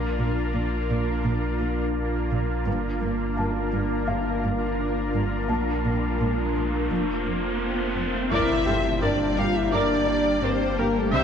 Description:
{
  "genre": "cinematic, hybrid orchestral and electronic film score",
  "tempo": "85 BPM",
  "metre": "4/4",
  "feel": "straight",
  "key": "G dorian",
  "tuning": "A4 = 442 Hz",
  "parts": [
    { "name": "ethereal airy pad", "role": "sustained chords", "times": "0.0-11.2 s", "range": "G3 to C5", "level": "-26 LUFS", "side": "equal", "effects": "ensemble chorus, built-in reverb" },
    { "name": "warm sub bass", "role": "bass", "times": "0.0-11.2 s", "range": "F1 to C2", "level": "-30 LUFS", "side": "equal", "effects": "none" },
    { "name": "felt-muted upright piano", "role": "texture", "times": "0.0-11.2 s", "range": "G4 to C6", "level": "-36 LUFS", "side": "left 1 dB", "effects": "tape echo" },
    { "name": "rich symphonic cello section", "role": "bass", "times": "0.2-11.2 s", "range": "F2 to C3", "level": "-30 LUFS", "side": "right 3 dB", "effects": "none" },
    { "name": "riser and impact", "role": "sound effects", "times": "4.8-11.1 s", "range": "none", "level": "-34 LUFS", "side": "equal", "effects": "none" },
    { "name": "rich symphonic violin section", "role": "second line", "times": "8.3-11.2 s", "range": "G4 to F5", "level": "-28 LUFS", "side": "left 2 dB", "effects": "none" },
    { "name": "clear symphonic viola section", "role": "accompaniment", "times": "8.3-11.2 s", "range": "G4 to E5", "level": "-28 LUFS", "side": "equal", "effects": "none" },
    { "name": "dark French horn section", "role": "sustained chords", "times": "8.3-11.2 s", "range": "G3 to F4", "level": "-25 LUFS", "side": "left 2 dB", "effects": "none" }
  ],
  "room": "moderate concert hall reverb, RT60 2.4 s",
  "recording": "worn, warbling old tape, cassette tape, warbly pitch drift",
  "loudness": "-22 LUFS",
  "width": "side -8 dB against mid",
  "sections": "0.0-8.3 A section; 8.3-11.2 B section",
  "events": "build-up 0.0-8.3; riser 4.8-8.3; impact 8.3-11.1",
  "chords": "0.0 Bb; 2.7 Gm7; 5.5 Bb; 6.9 F; 8.3 Gm",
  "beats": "0.55 1.25 1.96 | 2.67 3.37 4.08 4.78 | 5.49 6.19 6.90 7.61 | 8.31 9.02 9.72 10.43 | 11.13"
}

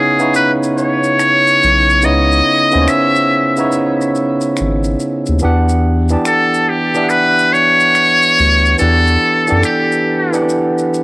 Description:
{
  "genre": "R&B, neo-soul",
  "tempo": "71 BPM",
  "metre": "4/4",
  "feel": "swing 64% on 16ths",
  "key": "unclear",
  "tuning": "A4 = 440 Hz",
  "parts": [
    { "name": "trumpet with metal mute", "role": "melody", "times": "0.0-10.5 s", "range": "G4 to E5", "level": "-12 LUFS", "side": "equal", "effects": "cassette tape" },
    { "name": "barky tine electric piano", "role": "accompaniment", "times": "0.0-11.0 s", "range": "C#3 to B5", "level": "-15 LUFS", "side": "right 1 dB", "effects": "overdrive, cassette tape" },
    { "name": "maracas and finger snaps", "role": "percussion", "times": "0.2-11.0 s", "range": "none", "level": "-27 LUFS", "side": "left 3 dB", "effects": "none" },
    { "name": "round analog bass", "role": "bass", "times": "1.6-9.6 s", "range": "G#1 to F#2", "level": "-14 LUFS", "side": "equal", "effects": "none" }
  ],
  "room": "light reverb, studio ambience",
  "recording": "home recording on cassette",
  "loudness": "-10 LUFS",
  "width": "side -24 dB against mid",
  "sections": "0.0-11.0 A section",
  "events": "none",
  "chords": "0.0 C#m9; 5.4 Em9",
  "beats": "0.35 1.19 | 2.04 2.88 3.73 4.57 | 5.42 6.26 7.11 7.95 | 8.80 9.64 10.49"
}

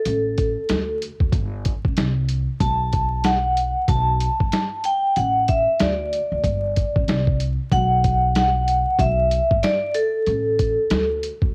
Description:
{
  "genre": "hip hop, jazz-hop",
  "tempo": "94 BPM",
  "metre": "4/4",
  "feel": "swing 60% on 16ths",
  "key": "B minor",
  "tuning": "A4 = 442 Hz",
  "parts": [
    { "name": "vibraphone with medium hard mallets", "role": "accompaniment", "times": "0.0-11.2 s", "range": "A4 to A5", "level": "-23 LUFS", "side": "equal", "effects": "cassette tape" },
    { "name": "upright bass", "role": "bass", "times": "0.1-11.5 s", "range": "G1 to D2", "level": "-26 LUFS", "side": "equal", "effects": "none" },
    { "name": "dusty soul sampler-style drum kit", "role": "drums", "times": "0.1-11.5 s", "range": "hi-hat, kick drum, snare drum", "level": "-24 LUFS", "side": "equal", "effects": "cassette tape" }
  ],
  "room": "light reverb, studio reverb",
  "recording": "home recording on cassette, vinyl crackle",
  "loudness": "-21 LUFS",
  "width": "mono",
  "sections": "0.0-11.5 A section",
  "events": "vibraphone solo 0.0-11.5",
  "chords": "0.1 N.C.; 0.7 D5; 1.3 Gsus2; 2.0 N.C.; 2.6 B5; 3.9 Gadd9; 5.2 A5; 5.8 N.C.; 6.4 Gsus2; 7.1 Csus2; 7.7 B5; 9.0 E5; 10.3 N.C.; 10.9 D5",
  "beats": "| 0.05 0.69 1.33 1.97 | 2.61 3.24 3.88 4.52 | 5.16 5.80 6.44 7.07 | 7.71 8.35 8.99 9.63 | 10.27 10.90"
}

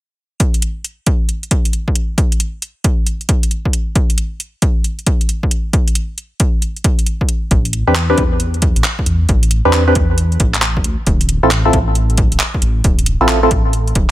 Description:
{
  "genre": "UK garage, two-step garage",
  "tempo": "135 BPM",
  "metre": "4/4",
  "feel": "swing 64% on 16ths",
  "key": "A minor",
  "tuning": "A4 = 440 Hz",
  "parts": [
    { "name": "electronic kick drum", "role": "drums", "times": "0.4-14.1 s", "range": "none", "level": "-15 LUFS", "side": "equal", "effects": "overdrive" },
    { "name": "garage drum kit", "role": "drums", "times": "0.4-14.1 s", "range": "handclaps, hi-hat", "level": "-19 LUFS", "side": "right 1 dB", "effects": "none" },
    { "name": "dark detuned saw bass", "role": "bass", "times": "7.5-14.1 s", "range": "D1 to E2", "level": "-16 LUFS", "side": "equal", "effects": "none" },
    { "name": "percussive organ stab", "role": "stabs", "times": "7.9-13.5 s", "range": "C4 to B4", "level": "-15 LUFS", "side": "equal", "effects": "chorus, phaser, digital delay" }
  ],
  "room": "little or no reverb",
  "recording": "none",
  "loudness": "-13 LUFS",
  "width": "side -14 dB against mid",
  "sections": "0.4-14.1 A section",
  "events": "none",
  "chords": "0.4 N.C.; 7.5 Am11; 10.8 Dm9",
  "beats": "| 0.40 0.84 1.29 1.73 | 2.18 2.62 3.07 3.51 | 3.96 4.40 4.84 5.29 | 5.73 6.18 6.62 7.07 | 7.51 7.96 8.40 8.85 | 9.29 9.73 10.18 10.62 | 11.07 11.51 11.96 12.40 | 12.85 13.29 13.73"
}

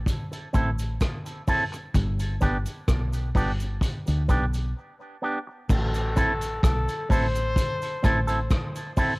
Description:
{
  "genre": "dub reggae",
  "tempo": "64 BPM",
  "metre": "4/4",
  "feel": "straight",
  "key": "A minor",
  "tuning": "A4 = 440 Hz",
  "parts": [
    { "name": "deep dub fingered electric bass", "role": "bass", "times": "0.0-8.5 s", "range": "G1 to D2", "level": "-25 LUFS", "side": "equal", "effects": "none" },
    { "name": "vintage drum kit", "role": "drums", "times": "0.1-9.2 s", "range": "crash cymbal, hi-hat, kick drum, rim click", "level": "-26 LUFS", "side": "equal", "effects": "cassette tape" },
    { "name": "cabasa", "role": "percussion", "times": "0.1-9.2 s", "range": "none", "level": "-47 LUFS", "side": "right 6 dB", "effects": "none" },
    { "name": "electric guitar with an envelope filter", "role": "accompaniment", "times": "0.3-9.1 s", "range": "B3 to A4", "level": "-30 LUFS", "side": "right 1 dB", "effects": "dub echo" },
    { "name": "breathy trumpet", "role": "melody", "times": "5.7-8.9 s", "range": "A4 to C5", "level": "-30 LUFS", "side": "left 2 dB", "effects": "cassette tape, dub echo" }
  ],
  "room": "small room ambience",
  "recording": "home recording on cassette",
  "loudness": "-23 LUFS",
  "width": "side -26 dB against mid",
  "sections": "0.0-5.7 A section; 5.7-9.2 B section",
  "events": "break 0.0-5.7",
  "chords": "0.0 Am; 1.9 G; 5.7 Am",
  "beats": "0.07 1.01 | 1.95 2.88 3.82 4.76 | 5.69 6.63 7.57 8.50"
}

